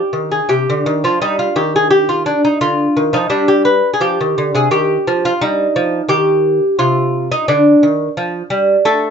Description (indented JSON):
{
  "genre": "classical, baroque-style dance for lute",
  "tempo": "86 BPM",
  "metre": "3/4",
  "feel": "rubato",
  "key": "C minor",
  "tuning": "A4 = 440 Hz",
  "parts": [
    { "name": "lute", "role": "solo", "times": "0.0-9.1 s", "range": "C3 to B4", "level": "-12 LUFS", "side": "equal", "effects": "none" }
  ],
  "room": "moderate studio reverb, RT60 0.6 s",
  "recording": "dark, warm production, nothing above 7.8 kHz",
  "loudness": "-12 LUFS",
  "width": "side -7 dB against mid",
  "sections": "0.5-9.1 A section",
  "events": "none",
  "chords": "0.0 Cm (rootless); 4.7 Ebadd9; 6.8 Cm",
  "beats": "| 0.50 1.22 1.92 | 2.62 3.31 4.01 | 4.72 5.41 6.10 | 6.79 7.48 8.17 | 8.86"
}